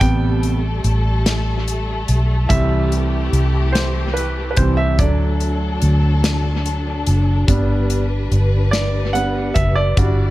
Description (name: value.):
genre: six-eight pop ballad.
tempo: 48 BPM (dotted quarters).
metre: 6/8.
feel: straight.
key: G major.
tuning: A4 = 437 Hz.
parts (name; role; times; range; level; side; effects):
clear baby grand piano; accompaniment; 0.0-10.3 s; C3 to G5; -21 LUFS; right 2 dB; none.
warm studio string section; sustained chords; 0.0-10.3 s; E3 to D5; -26 LUFS; left 2 dB; none.
vintage muted fingered electric bass; bass; 0.0-10.3 s; F#1 to D2; -17 LUFS; equal; none.
modern studio drum kit; drums; 0.0-10.2 s; hi-hat, kick drum, snare drum; -20 LUFS; equal; dub echo.
room: small room ambience.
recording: echo-heavy mix.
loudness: -15 LUFS.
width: side -16 dB against mid.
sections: 0.0-10.3 A section.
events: grand piano solo 0.0-10.3.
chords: 0.0 Am7; 2.5 C; 5.0 D; 7.5 G.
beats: | 0.01 1.26 | 2.50 3.75 | 4.99 6.24 | 7.48 8.73 | 9.97.